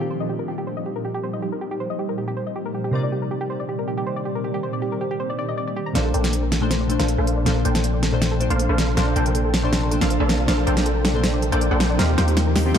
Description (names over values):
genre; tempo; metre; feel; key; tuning
future bass; 159 BPM; 4/4; half-time; Bb major; A4 = 440 Hz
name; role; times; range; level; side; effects
glassy digital keys; accompaniment; 0.0-12.8 s; Bb2 to D5; -27 LUFS; left 3 dB; chorus, phaser, tape echo
shimmering ambient pad; sustained chords; 0.0-12.8 s; Bb2 to D5; -29 LUFS; equal; chorus, built-in reverb, phaser
soft round pluck; arpeggios; 0.0-12.8 s; G4 to Bb5; -29 LUFS; equal; chorus, tape echo
supersaw stab; riff; 6.0-12.8 s; Bb3 to G5; -24 LUFS; equal; low-pass filter, tape echo
long sustained 808-style bass; bass; 6.0-12.8 s; Bb1 to Eb2; -22 LUFS; equal; none
pop drum kit; drums; 6.0-12.8 s; hi-hat, snare drum; -24 LUFS; equal; low-pass filter on cymbals, low-pass filter on snare, low-pass filter on hats
room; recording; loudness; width
moderate lush hall reverb, RT60 2.3 s; dark, warm production; -19 LUFS; side -8 dB against mid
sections
0.0-6.0 A section; 6.0-12.8 B section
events
filter sweep on synth arpeggio sound 0.0-6.0; build-up 6.0-12.8; drum fill 6.0-12.8; filter sweep on supersaw synth 6.0-12.8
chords
0.0 Eb69; 2.9 Cm9; 6.0 Bbmaj9; 12.0 Eb69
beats
0.29 0.67 1.05 | 1.43 1.80 2.18 2.56 | 2.93 3.31 3.69 4.07 | 4.44 4.82 5.20 5.58 | 5.95 6.33 6.71 7.08 | 7.46 7.84 8.22 8.59 | 8.97 9.35 9.73 10.10 | 10.48 10.86 11.24 11.61 | 11.99 12.37 12.74